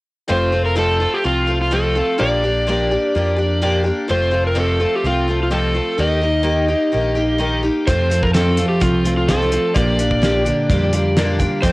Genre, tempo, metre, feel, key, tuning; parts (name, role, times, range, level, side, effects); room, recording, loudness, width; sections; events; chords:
folk rock and heartland rock; 127 BPM; 4/4; straight; F mixolydian; A4 = 441 Hz
overdriven slide guitar; melody; 0.3-11.7 s; F4 to Eb5; -20 LUFS; equal; tape echo
picked twelve-string acoustic guitar; accompaniment; 0.3-11.7 s; F2 to A4; -20 LUFS; left 2 dB
picked electric bass; bass; 0.3-11.7 s; F1 to F2; -21 LUFS; equal
mellow electric guitar; riff; 7.9-11.7 s; F2 to F4; -20 LUFS; right 1 dB; warbly pitch drift
cloth-damped thuddy drum kit; drums; 7.9-11.7 s; hi-hat, kick drum, snare drum; -21 LUFS; equal; cassette tape
light reverb; home recording on cassette; -15 LUFS; side -21 dB against mid
0.3-11.7 A section
0.3 F; 2.2 Bb6; 4.1 F; 6.0 Eb; 7.9 F; 9.8 Bb6